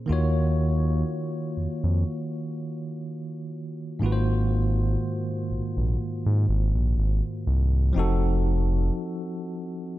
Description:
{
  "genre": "contemporary R&B",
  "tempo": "61 BPM",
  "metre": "4/4",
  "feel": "swing 54% on 16ths",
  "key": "unclear",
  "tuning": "A4 = 441 Hz",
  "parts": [
    { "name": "bell-like tine electric piano", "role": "accompaniment", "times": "0.0-10.0 s", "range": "Ab2 to Db5", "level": "-28 LUFS", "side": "equal", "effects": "fast stereo tremolo" },
    { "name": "smooth synth bass", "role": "bass", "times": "0.1-8.9 s", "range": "F1 to Ab2", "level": "-23 LUFS", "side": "equal", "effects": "none" }
  ],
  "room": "light reverb",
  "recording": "none",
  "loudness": "-23 LUFS",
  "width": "side -16 dB against mid",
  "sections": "0.0-8.0 A section; 8.0-10.0 B section",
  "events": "none",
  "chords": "0.1 Ebm7; 4.0 Ab13; 8.0 F7b9",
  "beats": "| 0.09 1.07 2.06 3.04 | 4.02 5.01 5.99 6.97 | 7.96 8.94 9.93"
}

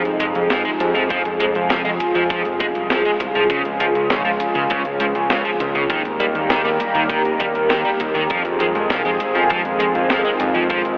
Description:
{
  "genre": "synthwave",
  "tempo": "100 BPM",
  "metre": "4/4",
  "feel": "straight",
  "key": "F minor",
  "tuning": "A4 = 442 Hz",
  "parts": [
    { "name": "phased analog pad", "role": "sustained chords", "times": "0.0-11.0 s", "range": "C3 to Bb4", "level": "-20 LUFS", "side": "equal", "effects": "phaser, chorus, sidechain pumping" },
    { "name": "warbly dusty pluck", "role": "arpeggios", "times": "0.0-10.8 s", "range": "none", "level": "barely audible", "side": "none", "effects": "none" },
    { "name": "fat analog bass", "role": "bass", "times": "0.0-11.0 s", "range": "F1 to F2", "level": "-24 LUFS", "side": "equal", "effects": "none" },
    { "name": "clean 12-bit digital drum machine", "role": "drums", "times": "0.1-11.0 s", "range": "hi-hat, snare drum", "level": "-26 LUFS", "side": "equal", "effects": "none" },
    { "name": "overdriven electric guitar", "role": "riff", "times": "0.2-10.8 s", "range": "Db3 to Ab3", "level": "-22 LUFS", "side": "equal", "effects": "wide subtle chorus, tape echo" },
    { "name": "kick drum", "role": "drums", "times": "1.1-10.8 s", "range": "none", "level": "-32 LUFS", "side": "equal", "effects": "none" }
  ],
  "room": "wet huge ambient reverb, RT60 8.7 s",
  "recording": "dreamy mix soaked in reverb, telephone sound",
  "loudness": "-16 LUFS",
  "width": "side -34 dB against mid",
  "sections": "0.0-11.0 A section",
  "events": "none",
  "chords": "0.0 Fm7; 3.5 Db; 5.9 Eb; 8.3 Fm7",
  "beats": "0.50 | 1.10 1.70 2.30 2.90 | 3.50 4.10 4.70 5.30 | 5.90 6.50 7.10 7.70 | 8.30 8.90 9.50 10.10 | 10.70"
}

